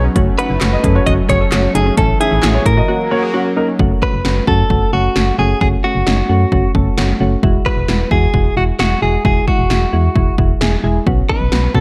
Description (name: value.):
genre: synth-pop.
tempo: 132 BPM.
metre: 4/4.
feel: straight.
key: unclear.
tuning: A4 = 439 Hz.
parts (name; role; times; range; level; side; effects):
clear grand piano; second line; 0.0-3.7 s; A#4 to F#5; -26 LUFS; equal; analog delay.
soft electric-piano-like synth keys; accompaniment; 0.0-11.8 s; G#3 to A4; -22 LUFS; equal; chorus.
brassy analog pad; sustained chords; 0.0-3.8 s; E3 to D#4; -25 LUFS; equal; chorus.
warbly dusty pluck; arpeggios; 0.0-3.7 s; C#4 to A4; -27 LUFS; equal; chorus, analog delay.
solid FM bass; bass; 0.0-11.8 s; E1 to B2; -19 LUFS; equal; none.
80s electronic pad drums; drums; 0.2-11.8 s; handclaps, hi-hat, kick drum, snare drum; -19 LUFS; equal; overdrive.
direct-recorded clean electric guitar; melody; 0.4-11.8 s; F#4 to D#5; -21 LUFS; equal; analog delay.
room: little or no reverb.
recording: none.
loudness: -14 LUFS.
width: mono.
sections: 0.0-3.8 A section; 3.8-11.8 B section.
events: break 2.9-3.8.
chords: 0.2 F#m; 2.0 A; 2.9 F#; 3.8 F#m; 7.4 Eadd9; 11.1 Bsus2.